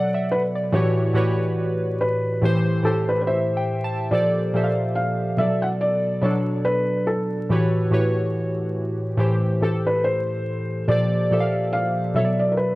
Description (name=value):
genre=hip hop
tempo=71 BPM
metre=4/4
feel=swing 56% on 16ths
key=unclear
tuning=A4 = 440 Hz
part: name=felt-muted upright piano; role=melody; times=0.0-12.8 s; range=A4 to F#5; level=-24 LUFS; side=equal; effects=low-pass filter, plate reverb, analog delay
part: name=warm analog keys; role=accompaniment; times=0.0-12.8 s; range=A2 to A5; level=-21 LUFS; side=equal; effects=chorus, cassette tape, low-pass filter, plate reverb
room=moderate studio reverb, RT60 0.5 s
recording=dark, warm production, vinyl crackle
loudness=-19 LUFS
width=side -19 dB against mid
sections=0.0-4.1 A section; 4.1-12.8 B section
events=none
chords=0.0 Bm11; 0.7 A13; 2.4 Am7; 4.1 Bbmaj13; 5.4 Bm9; 7.5 A13; 9.2 Am7; 10.9 Bbmaj13; 12.1 Bm11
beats=| 0.74 1.58 2.43 3.27 | 4.12 4.96 5.81 6.65 | 7.50 8.34 9.19 10.03 | 10.88 11.72 12.57